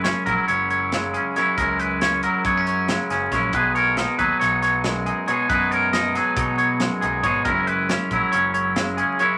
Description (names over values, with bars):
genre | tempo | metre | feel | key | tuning
math rock and midwest emo | 275 BPM (eighths) | 9/8 | straight | unclear | A4 = 441 Hz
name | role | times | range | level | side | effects
twangy electric guitar | accompaniment | 0.0-9.4 s | F#2 to A#4 | -24 LUFS | equal | none
twangy electric guitar | arpeggios | 0.0-9.4 s | G#4 to D#5 | -25 LUFS | equal | none
growling picked electric bass | bass | 0.0-9.0 s | F#1 to B2 | -33 LUFS | equal | overdrive
modern studio drum kit | drums | 0.0-9.3 s | hi-hat, kick drum, snare drum | -31 LUFS | equal | none
room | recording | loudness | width
moderate small room reverb, RT60 0.6 s | vinyl crackle | -21 LUFS | mono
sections
0.0-9.4 A section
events
none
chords
0.0 F#9; 3.5 B69; 7.5 F#9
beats
0.05 0.27 0.48 0.70 0.92 1.14 1.36 | 1.58 1.80 2.01 2.23 2.45 2.67 2.89 3.11 3.32 | 3.54 3.76 3.98 4.20 4.41 4.63 4.85 5.07 5.29 | 5.50 5.72 5.94 6.16 6.37 6.59 6.81 7.03 7.24 | 7.46 7.68 7.90 8.11 8.33 8.55 8.77 8.98 9.20